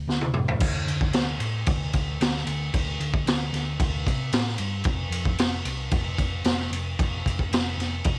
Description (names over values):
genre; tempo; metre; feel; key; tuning
garage rock duo or trio; 113 BPM; 4/4; straight; D minor; A4 = 440 Hz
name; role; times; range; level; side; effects
hollow-body short-scale picked electric bass; bass; 0.0-8.2 s; F1 to D3; -29 LUFS; equal; none
raw garage drum kit; drums; 0.1-8.2 s; crash cymbal, kick drum, ride cymbal, snare drum, toms; -24 LUFS; equal; cassette tape
room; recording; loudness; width
little or no reverb; home recording on cassette; -23 LUFS; side -35 dB against mid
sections
0.6-8.2 A section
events
drum fill 0.1-0.6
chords
none